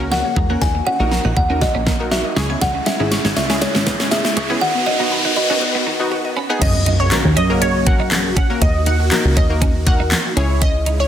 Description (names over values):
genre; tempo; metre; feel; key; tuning
dance-pop; 120 BPM; 4/4; straight; unclear; A4 = 441 Hz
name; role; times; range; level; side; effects
kalimba; melody; 0.0-6.1 s; A#4 to G#5; -22 LUFS; equal; digital delay
punchy chord stab; accompaniment; 0.0-11.0 s; A#3 to C#5; -24 LUFS; left 1 dB; chorus, sidechain pumping
supersaw chords; sustained chords; 0.0-11.1 s; C#3 to F#4; -26 LUFS; right 1 dB; phaser, sidechain pumping
mallet-like synth pluck; arpeggios; 0.0-6.6 s; D#3 to G#6; -29 LUFS; left 2 dB; chorus, sidechain pumping, digital delay
plucky analog bass; bass; 0.0-11.1 s; G#1 to F#2; -20 LUFS; equal; sidechain pumping
riser and impact; sound effects; 1.5-8.6 s; none; -24 LUFS; equal; none
twelve-string electric guitar; riff; 0.1-11.0 s; G#3 to D#4; -27 LUFS; right 6 dB; lush chorus
smooth R&B drum kit; drums; 0.1-11.0 s; crash cymbal, handclaps, hi-hat, kick drum, snare drum; -18 LUFS; equal; soft clipping on snare
wide unison pluck; melody; 6.6-11.1 s; C#5 to F#5; -22 LUFS; right 1 dB; sidechain pumping, digital delay
room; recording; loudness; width
moderate digital room reverb, RT60 0.9 s, digital ambience; dense, heavily limited modern master, high-pass filter; -14 LUFS; side -10 dB against mid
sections
0.0-6.6 A section; 6.6-11.1 B section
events
build-up 0.0-6.6; drum fill 0.0-4.6; filter sweep 0.0-6.6; riser 1.5-6.6; drop 6.6-11.1; impact 6.6-8.6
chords
0.0 F#; 0.6 D#m; 2.4 C#m; 4.6 B; 6.6 F#; 8.6 D#m; 10.4 C#m